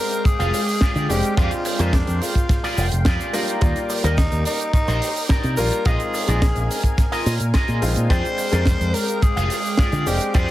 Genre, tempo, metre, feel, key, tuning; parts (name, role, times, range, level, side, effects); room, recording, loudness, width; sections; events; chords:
nu-disco, nu disco; 107 BPM; 4/4; straight; F dorian; A4 = 438 Hz
raspy tenor saxophone; melody; 0.0-10.5 s; D4 to C5; -26 LUFS; left 1 dB; ping-pong delay
bright grand piano; accompaniment; 0.0-10.5 s; G3 to G5; -28 LUFS; left 2 dB; sidechain pumping, ping-pong delay
lush unison pad; sustained chords; 0.0-10.5 s; Ab3 to D6; -30 LUFS; equal; chorus, sidechain pumping
tight funk drum kit; drums; 0.1-10.5 s; hi-hat, shaker, snare drum; -27 LUFS; right 2 dB
picked electric bass with an envelope filter; bass; 0.3-10.5 s; F1 to D3; -21 LUFS; equal
kick drum; drums; 0.3-10.5 s; -19 LUFS; equal
electric guitar with an envelope filter; riff; 0.4-10.5 s; Eb4 to F5; -28 LUFS; right 1 dB; analog chorus
light reverb, studio reverb; heavily compressed radio sound; -18 LUFS; side -14 dB against mid
0.0-10.5 A section
0.0 Fm69; 3.3 Ebmaj7; 5.9 Bb7sus4; 8.1 Fm69